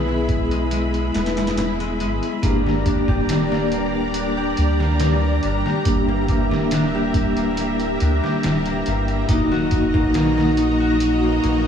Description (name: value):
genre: trip hop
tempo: 70 BPM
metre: 4/4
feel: straight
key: unclear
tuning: A4 = 440 Hz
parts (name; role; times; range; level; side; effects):
- vibraphone with soft mallets; accompaniment; 0.0-11.7 s; Bb3 to G#4; -22 LUFS; equal; tremolo, tape echo
- string machine, cellos; sustained chords; 0.0-11.7 s; F#4 to B5; -25 LUFS; equal; ensemble chorus
- concert harp; arpeggios; 0.0-11.7 s; G#3 to G4; -28 LUFS; left 3 dB; diffuse ambient delay
- soft dub sub bass; bass; 0.0-11.7 s; D1 to D2; -24 LUFS; equal; tube saturation
- trip hop sampler-style drum kit; drums; 0.3-11.6 s; hi-hat, kick drum, snare drum; -23 LUFS; equal; overdrive
room: moderate lush hall reverb, RT60 2.3 s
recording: dreamy mix soaked in reverb, small room ambience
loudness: -17 LUFS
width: side -8 dB against mid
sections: 0.0-2.4 A section; 2.4-11.7 B section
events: filter sweep on vibraphone 0.0-2.4; kick drops out 0.7-2.4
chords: 0.0 E; 2.4 Gm; 9.3 D#m